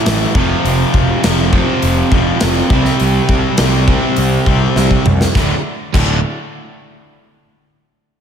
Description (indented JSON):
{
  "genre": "hard rock",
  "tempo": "102 BPM",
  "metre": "4/4",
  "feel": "straight",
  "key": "unclear",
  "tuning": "A4 = 439 Hz",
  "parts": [
    { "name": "cranked stack guitar", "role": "riff", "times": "0.0-6.2 s", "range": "D2 to C4", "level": "-18 LUFS", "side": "right 9 dB", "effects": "overdrive, slapback echo" },
    { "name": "distorted electric guitar", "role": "riff", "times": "0.0-6.2 s", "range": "D2 to C4", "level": "-18 LUFS", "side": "left 8 dB", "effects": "overdrive, slapback echo" },
    { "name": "fuzz picked electric bass", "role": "bass", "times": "0.1-6.2 s", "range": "D1 to C2", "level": "-17 LUFS", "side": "equal", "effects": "overdrive" },
    { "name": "gated 80s drum kit", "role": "drums", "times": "0.1-6.1 s", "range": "crash cymbal, hi-hat, kick drum, snare drum, toms", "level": "-16 LUFS", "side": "equal", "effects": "none" }
  ],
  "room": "moderate lush hall reverb, RT60 2.0 s",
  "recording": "big arena sound",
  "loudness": "-11 LUFS",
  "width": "side -8 dB against mid",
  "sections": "0.0-5.4 A section; 5.4-7.7 B section",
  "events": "drum fill 4.8-5.4",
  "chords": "0.4 F5; 2.7 C5; 5.4 D5"
}